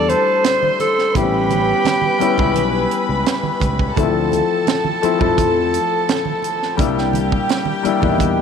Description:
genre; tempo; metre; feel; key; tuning
lush 1970s-style soul; 85 BPM; 4/4; straight; A minor; A4 = 439 Hz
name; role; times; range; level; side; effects
warm alto saxophone; melody; 0.0-3.3 s; G4 to D5; -18 LUFS; right 2 dB; none
warm studio violin section; second line; 0.0-8.4 s; G4 to C6; -22 LUFS; right 2 dB; none
warm grand piano; accompaniment; 0.0-8.4 s; E3 to E4; -20 LUFS; left 10 dB; none
fingered electric bass; bass; 0.0-8.4 s; A1 to F2; -22 LUFS; right 1 dB; none
tight funk drum kit; drums; 0.1-8.4 s; hi-hat, kick drum, snare drum; -22 LUFS; right 4 dB; none
congas; percussion; 0.1-8.4 s; none; -28 LUFS; right 10 dB; none
room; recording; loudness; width
light reverb, studio reverb; 1960s-style stereo with parts hard left and right; -15 LUFS; side -7 dB against mid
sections
0.0-8.4 A section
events
none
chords
0.0 C6; 1.1 A7; 4.0 Dm7; 6.8 C9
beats
0.44 | 1.15 1.85 2.56 3.27 | 3.97 4.68 5.38 6.09 | 6.79 7.50 8.20

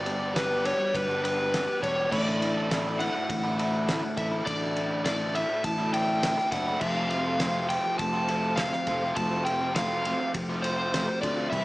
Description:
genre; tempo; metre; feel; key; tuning
folk rock and heartland rock; 102 BPM; 4/4; straight; unclear; A4 = 438 Hz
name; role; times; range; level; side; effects
overdriven slide guitar; melody; 0.0-11.6 s; B4 to A5; -29 LUFS; equal; slapback echo
picked steel-string acoustic guitar; accompaniment; 0.0-11.6 s; G2 to G4; -34 LUFS; left 1 dB; none
tonewheel organ; sustained chords; 0.0-11.6 s; G3 to B4; -42 LUFS; right 1 dB; none
biting overdriven guitar; riff; 0.0-11.6 s; F2 to G4; -32 LUFS; right 1 dB; none
fingered electric bass; bass; 0.0-11.6 s; E1 to D2; -36 LUFS; equal; none
cloth-damped thuddy drum kit; drums; 0.1-11.6 s; crash cymbal, kick drum, ride cymbal, snare drum; -32 LUFS; equal; none
room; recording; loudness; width
moderate echo chamber reverb, RT60 1.4 s; small speaker sound; -25 LUFS; side -19 dB against mid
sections
0.0-11.6 A section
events
none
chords
0.0 G; 2.1 Asus4; 6.8 Fadd9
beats
0.35 0.94 1.53 | 2.11 2.70 3.29 3.88 | 4.46 5.05 5.64 6.23 | 6.81 7.40 7.99 8.58 | 9.16 9.75 10.34 10.93 | 11.52

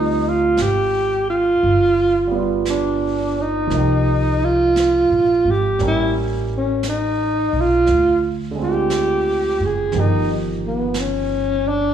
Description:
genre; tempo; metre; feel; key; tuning
jazz ballad; 58 BPM; 4/4; swing 67% on 8ths; unclear; A4 = 436 Hz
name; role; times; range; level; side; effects
breathy alto saxophone; melody; 0.0-11.9 s; B3 to Ab4; -18 LUFS; right 1 dB; none
warm baby grand piano; accompaniment; 0.0-11.9 s; D3 to D5; -25 LUFS; right 4 dB; none
upright bass; bass; 0.0-11.9 s; F#1 to D2; -23 LUFS; right 1 dB; none
jazz brush drum kit; drums; 0.6-11.9 s; brushed snare drum, hi-hat, snare drum; -34 LUFS; right 3 dB; none
room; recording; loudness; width
light reverb; small room ambience; -16 LUFS; side -9 dB against mid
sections
0.0-11.9 A section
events
none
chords
0.0 Dm7b5; 1.6 G7; 3.7 Cm7; 5.8 A7b9; 7.9 Dm7b5; 9.9 Gm7b13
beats
0.59 1.62 2.65 | 3.70 4.75 5.79 6.83 | 7.86 8.90 9.93 10.95

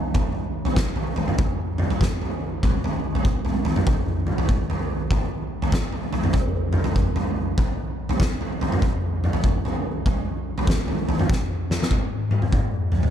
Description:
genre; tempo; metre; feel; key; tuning
metal; 97 BPM; 4/4; swing 64% on 8ths; none; none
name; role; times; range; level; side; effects
oversized low-tuned drum kit; drums; 0.1-13.1 s; kick drum, snare drum, toms; -21 LUFS; equal; none
room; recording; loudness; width
little or no reverb; none; -21 LUFS; side -9 dB against mid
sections
0.0-13.1 A section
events
drum fill 11.3-13.1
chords
none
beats
0.14 0.76 | 1.38 2.00 2.62 3.24 | 3.86 4.48 5.10 5.71 | 6.33 6.95 7.57 8.19 | 8.80 9.42 10.04 10.66 | 11.27 11.89 12.51

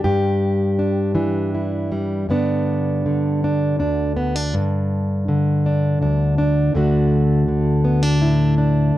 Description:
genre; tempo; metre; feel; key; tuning
folk, solo fingerstyle acoustic guitar; 81 BPM; 3/4; rubato; G major; A4 = 440 Hz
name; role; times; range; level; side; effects
fingerpicked plugged-in steel-string acoustic guitar; solo; 0.0-9.0 s; D2 to G4; -17 LUFS; equal; none
room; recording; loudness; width
light reverb; worn, warbling old tape, cassette tape, warbly pitch drift; -17 LUFS; side -14 dB against mid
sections
0.0-2.3 A section; 2.3-9.0 B section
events
none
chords
0.0 Em7/G; 2.3 G; 6.7 Dadd9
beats
| 0.04 0.78 1.53 | 2.30 3.05 3.80 | 4.54 5.28 6.01 | 6.75 7.48 8.22 | 8.96

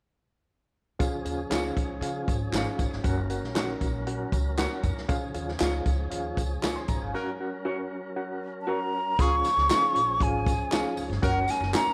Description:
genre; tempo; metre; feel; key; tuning
uptempo 1960s-style soul; 117 BPM; 4/4; straight; Db major; A4 = 444 Hz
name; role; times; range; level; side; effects
overdriven reed electric piano; accompaniment; 1.0-11.9 s; Db3 to C6; -36 LUFS; equal; fast tremolo
tonewheel organ; sustained chords; 1.0-11.9 s; F3 to Bb4; -40 LUFS; equal; overdrive, fast rotary speaker
upright bass; bass; 1.0-11.9 s; Gb1 to Db3; -34 LUFS; equal; none
swinging big-band drum kit; drums; 1.0-11.9 s; hi-hat, kick drum, snare drum; -32 LUFS; equal; vintage 12-bit sampler grit
tambourine and handclaps; percussion; 1.0-11.9 s; none; -42 LUFS; equal; none
electric guitar through a small old amp; stabs; 1.5-11.9 s; F4 to Db5; -38 LUFS; equal; none
warm horn section; second line; 7.1-11.4 s; Db4 to Bb4; -39 LUFS; equal; none
breathy mellow silver concert flute; melody; 8.6-11.9 s; Gb5 to Db6; -28 LUFS; equal; none
room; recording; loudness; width
moderate plate reverb, RT60 2.2 s; none; -28 LUFS; mono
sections
1.0-9.2 A section; 9.2-11.9 B section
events
band accent 7.1-9.2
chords
1.0 Db; 3.0 Gb; 5.1 Db; 7.1 Gb; 9.2 Db; 11.2 Gb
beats
| 1.00 1.51 2.02 2.53 | 3.04 3.56 4.07 4.58 | 5.09 5.60 6.12 6.63 | 7.14 7.65 8.16 8.68 | 9.19 9.70 10.21 10.72 | 11.23 11.74

